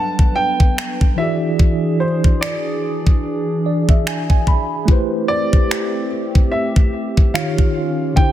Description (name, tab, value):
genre	contemporary R&B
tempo	73 BPM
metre	4/4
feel	swing 58% on 16ths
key	unclear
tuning	A4 = 440 Hz
part	dark baby grand piano	melody	0.0-8.3 s	C5 to A5	-23 LUFS	right 1 dB	digital delay
part	mellow tine electric piano	accompaniment	0.0-8.3 s	D3 to B5	-22 LUFS	right 1 dB	medium stereo tremolo
part	hollow soft pad	sustained chords	0.0-8.3 s	D3 to B4	-24 LUFS	equal	chorus
part	smooth R&B drum kit	drums	0.2-8.3 s	finger snaps, kick drum	-14 LUFS	equal	soft clipping on snare
room	light reverb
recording	dense, heavily limited modern master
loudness	-15 LUFS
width	side -12 dB against mid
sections	0.0-8.3 A section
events	break 0.0-8.3; tine electric piano fill 3.2-4.9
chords	0.0 Gmaj7; 1.2 E7; 4.9 Am7; 7.3 Eb9